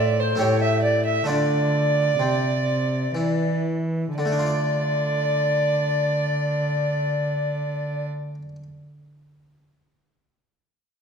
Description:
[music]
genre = classical, baroque-style sonata movement with continuo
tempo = 57-72 BPM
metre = 3/4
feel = straight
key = D minor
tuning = A4 = 440 Hz
[part]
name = alto recorder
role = melody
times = 0.0-8.1 s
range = C5 to E5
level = -27 LUFS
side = left 10 dB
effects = none
[part]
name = rich violin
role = second line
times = 0.0-8.1 s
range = C5 to E5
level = -26 LUFS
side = right 7 dB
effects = none
[part]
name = harpsichord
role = accompaniment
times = 0.0-8.6 s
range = A2 to D5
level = -28 LUFS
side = equal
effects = none
[part]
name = dark cello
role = bass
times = 0.0-8.1 s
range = A2 to E3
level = -25 LUFS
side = right 1 dB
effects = none
[sound]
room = wet recital hall reverb, RT60 1.4 s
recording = minimal, uncompressed stereo recording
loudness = -20 LUFS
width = side -6 dB against mid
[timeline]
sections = 0.0-4.2 A section; 4.2-7.3 B section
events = slowing down 0.0-4.2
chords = 0.4 A5; 1.3 Dm

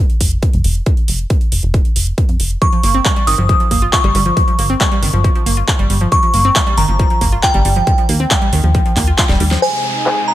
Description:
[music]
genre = uplifting trance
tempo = 137 BPM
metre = 4/4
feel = straight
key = unclear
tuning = A4 = 439 Hz
[part]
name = plucky analog bass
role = bass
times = 0.0-9.6 s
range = Eb1 to F2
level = -16 LUFS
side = equal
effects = sidechain pumping
[part]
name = big-room dance drum kit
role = drums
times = 0.1-10.1 s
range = handclaps, hi-hat, snare drum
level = -19 LUFS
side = equal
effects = low-pass filter on hats, low-pass filter on snare, low-pass filter on room
[part]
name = electronic kick drum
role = drums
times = 0.2-9.3 s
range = none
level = -15 LUFS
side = equal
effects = none
[part]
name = glassy synth bell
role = second line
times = 2.6-10.3 s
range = G5 to Eb6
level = -17 LUFS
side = equal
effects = chorus, digital delay
[part]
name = analog pluck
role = arpeggios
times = 2.6-9.6 s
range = Eb3 to F4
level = -21 LUFS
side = right 1 dB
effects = chorus, sidechain pumping, tape echo
[part]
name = wide unison pluck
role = melody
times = 9.6-10.3 s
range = C5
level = -20 LUFS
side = left 5 dB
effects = auto-pan, sidechain pumping, tape echo
[part]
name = supersaw pad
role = sustained chords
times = 9.6-10.3 s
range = C3 to Ab4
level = -23 LUFS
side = equal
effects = sidechain pumping
[part]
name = downlifter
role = sound effects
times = 9.6-10.3 s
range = none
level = -21 LUFS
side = equal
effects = none
[sound]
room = light reverb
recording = none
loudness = -11 LUFS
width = side -14 dB against mid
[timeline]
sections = 0.0-9.6 A section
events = drum fill 9.2-9.6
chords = 0.0 N.C.; 2.6 Gdim; 7.9 Ebadd9; 9.6 Ab

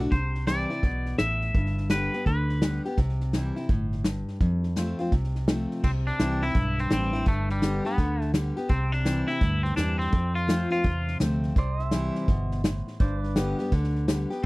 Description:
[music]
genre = honky-tonk and classic country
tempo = 168 BPM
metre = 4/4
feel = swing 64% on 8ths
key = C major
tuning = A4 = 439 Hz
[part]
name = picked steel-string acoustic guitar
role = accompaniment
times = 0.0-14.5 s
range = F2 to G4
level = -30 LUFS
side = left 1 dB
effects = none
[part]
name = pedal steel guitar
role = sustained chords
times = 0.0-0.1, 11.6-14.4 s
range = B4 to E5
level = -37 LUFS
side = right 3 dB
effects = none
[part]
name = vintage muted fingered electric bass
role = bass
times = 0.0-14.2 s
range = G1 to F2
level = -28 LUFS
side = equal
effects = none
[part]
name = twangy electric guitar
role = melody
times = 0.1-2.8, 5.8-11.2 s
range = G3 to E5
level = -30 LUFS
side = equal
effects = none
[part]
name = unplugged drum kit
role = drums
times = 0.1-14.3 s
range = crash cymbal, hi-hat, kick drum, snare drum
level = -26 LUFS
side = equal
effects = none
[sound]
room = little or no reverb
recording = dry, close 1970s-style studio recording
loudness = -23 LUFS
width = side -22 dB against mid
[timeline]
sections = 0.1-5.8 A section; 5.8-14.5 B section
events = none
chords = 0.1 C; 1.5 G; 3.0 C; 4.4 F; 5.8 C; 7.3 G; 8.7 C; 10.1 F; 11.6 C; 13.0 G

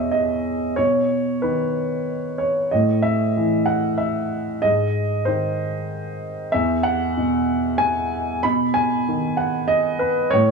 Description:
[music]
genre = neoclassical minimalist piano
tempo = 94 BPM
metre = 3/4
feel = rubato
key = unclear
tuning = A4 = 440 Hz
[part]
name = warm grand piano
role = solo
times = 0.0-10.5 s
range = E2 to B5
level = -19 LUFS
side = right 1 dB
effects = none
[sound]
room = moderate spring reverb, RT60 1.6 s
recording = small room ambience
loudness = -19 LUFS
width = side -4 dB against mid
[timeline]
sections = 0.0-10.5 A section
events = none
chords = 0.0 E5; 0.8 B; 2.7 A5; 4.6 G#; 6.5 E; 8.4 B

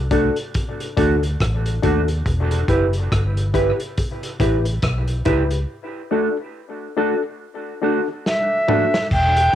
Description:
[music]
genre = dub reggae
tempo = 70 BPM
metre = 4/4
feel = swing 59% on 16ths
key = unclear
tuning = A4 = 441 Hz
[part]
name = vintage muted fingered electric bass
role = bass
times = 0.0-9.5 s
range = E1 to D#2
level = -20 LUFS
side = equal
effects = none
[part]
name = mellow electric guitar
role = accompaniment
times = 0.1-8.9 s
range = A3 to B4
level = -25 LUFS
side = right 8 dB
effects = lush chorus, cassette tape, dub echo
[part]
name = reed electric piano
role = stabs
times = 0.1-9.6 s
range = D4 to B4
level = -24 LUFS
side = left 7 dB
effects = cassette tape, dub echo
[part]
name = vintage drum kit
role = drums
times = 0.1-9.5 s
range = crash cymbal, hi-hat, kick drum, rim click, snare drum, toms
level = -24 LUFS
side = equal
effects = cassette tape
[part]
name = bright reedy silver concert flute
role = melody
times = 8.3-9.6 s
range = E5 to G5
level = -17 LUFS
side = equal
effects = dub echo
[sound]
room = moderate studio reverb, RT60 0.6 s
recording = home recording on cassette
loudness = -18 LUFS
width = side -11 dB against mid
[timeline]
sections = 0.0-9.1 A section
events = drum fill 8.3-9.1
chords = 0.0 D; 2.3 Em; 5.7 D

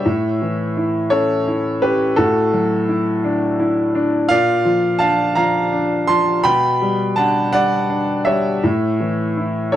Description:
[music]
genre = neoclassical minimalist piano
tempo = 56 BPM (dotted quarters)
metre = 6/8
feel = rubato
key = unclear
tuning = A4 = 440 Hz
[part]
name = clear grand piano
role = solo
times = 0.0-9.8 s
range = A2 to C6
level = -15 LUFS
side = equal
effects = none
[sound]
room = little or no reverb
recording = dry, close 1970s-style studio recording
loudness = -15 LUFS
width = side -12 dB against mid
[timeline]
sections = 0.0-9.8 A section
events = none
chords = 0.1 A; 2.2 Dadd9/A; 4.3 Bb; 6.4 G/B; 8.6 A

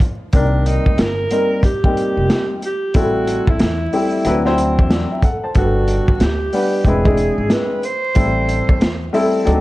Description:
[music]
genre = hip hop, jazz-hop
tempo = 92 BPM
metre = 4/4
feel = swing 61% on 16ths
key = unclear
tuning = A4 = 440 Hz
[part]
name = crunchy breakbeat drum kit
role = drums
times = 0.0-9.6 s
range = hi-hat, kick drum, snare drum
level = -17 LUFS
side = equal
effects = vintage 12-bit sampler grit
[part]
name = dark upright piano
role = accompaniment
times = 0.3-9.6 s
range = Eb3 to A5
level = -19 LUFS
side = left 2 dB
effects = none
[part]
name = upright bass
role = bass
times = 0.3-9.6 s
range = E1 to E2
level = -20 LUFS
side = equal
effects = none
[part]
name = breathy alto saxophone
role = melody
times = 0.4-9.1 s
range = D4 to C5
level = -21 LUFS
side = right 2 dB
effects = none
[sound]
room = light reverb, studio reverb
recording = dark, warm production, vinyl crackle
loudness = -14 LUFS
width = side -18 dB against mid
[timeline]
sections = 0.0-9.6 A section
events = upright piano fill 8.8-9.6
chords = 0.3 Cm7; 2.9 Am7; 4.2 D9; 5.6 Gmaj9; 6.9 E7b13; 8.2 Am7

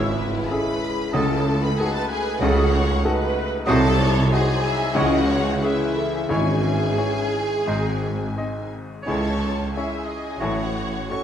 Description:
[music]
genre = classical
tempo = 83-97 BPM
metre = 4/4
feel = rubato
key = C# minor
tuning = A4 = 442 Hz
[part]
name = clear grand piano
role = melody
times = 0.0-11.2 s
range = G#1 to D#5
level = -26 LUFS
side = left 3 dB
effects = none
[part]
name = rich studio violin section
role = melody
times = 0.0-11.2 s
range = E5 to C#6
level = -32 LUFS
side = left 2 dB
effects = none
[part]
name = clear oboe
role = second line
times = 0.0-10.6 s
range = C5 to D#5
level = -36 LUFS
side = right 1 dB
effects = none
[part]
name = flute section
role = second line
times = 0.0-10.7 s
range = C#6 to E6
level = -33 LUFS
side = equal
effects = none
[part]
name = rich studio violin section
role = second line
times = 0.0-11.2 s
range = E4 to C#5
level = -30 LUFS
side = left 1 dB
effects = none
[part]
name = warm clarinet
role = second line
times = 0.0-10.6 s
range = D#4 to A4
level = -33 LUFS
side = equal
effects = none
[part]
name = warm bassoon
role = accompaniment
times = 0.0-10.6 s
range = F#3 to A3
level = -33 LUFS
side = right 2 dB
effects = none
[part]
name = warm studio viola section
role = accompaniment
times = 0.0-11.2 s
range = G#4 to E5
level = -29 LUFS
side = right 2 dB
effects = none
[part]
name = mellow French horn section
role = sustained chords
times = 0.0-10.6 s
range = D#3 to E4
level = -30 LUFS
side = left 4 dB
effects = none
[part]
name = mellow tuba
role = bass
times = 0.0-11.0 s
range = G#1 to C#2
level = -30 LUFS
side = right 3 dB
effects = none
[part]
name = rich symphonic cello section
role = bass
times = 0.0-11.0 s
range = G#2 to C#3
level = -28 LUFS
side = right 2 dB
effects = none
[part]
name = warm studio double bass section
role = bass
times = 0.0-11.0 s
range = G#1 to C#2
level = -27 LUFS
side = right 2 dB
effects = none
[part]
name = timpani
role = percussion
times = 1.1-7.3 s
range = G#2 to C#3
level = -31 LUFS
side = left 2 dB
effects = none
[sound]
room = wet recital hall reverb, RT60 1.8 s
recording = dark, warm production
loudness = -19 LUFS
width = side -9 dB against mid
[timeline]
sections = 0.0-11.2 A section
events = none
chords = 0.0 C#m; 1.1 D#m7b5/C#; 3.7 Cdim7; 5.0 C#m; 6.3 C#m/G#; 7.7 G#; 9.1 C#m; 10.4 F#m/A

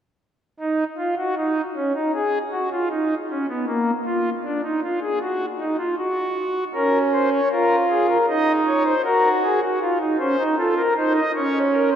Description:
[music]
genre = classical, baroque-style 3-part fugue for pipe organ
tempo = 78 BPM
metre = 4/4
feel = straight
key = unclear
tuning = A4 = 440 Hz
[part]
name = pipe organ, foundations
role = solo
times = 0.6-12.0 s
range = Bb3 to Eb5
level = -19 LUFS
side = equal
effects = none
[sound]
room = wet cathedral reverb, RT60 4.5 s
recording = none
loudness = -19 LUFS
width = side -9 dB against mid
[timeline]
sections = 0.6-12.0 A section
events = none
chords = 0.6 N.C.; 6.7 Bbm/Db; 8.3 Cdim/Eb; 9.8 F7; 11.3 Bbm/Db

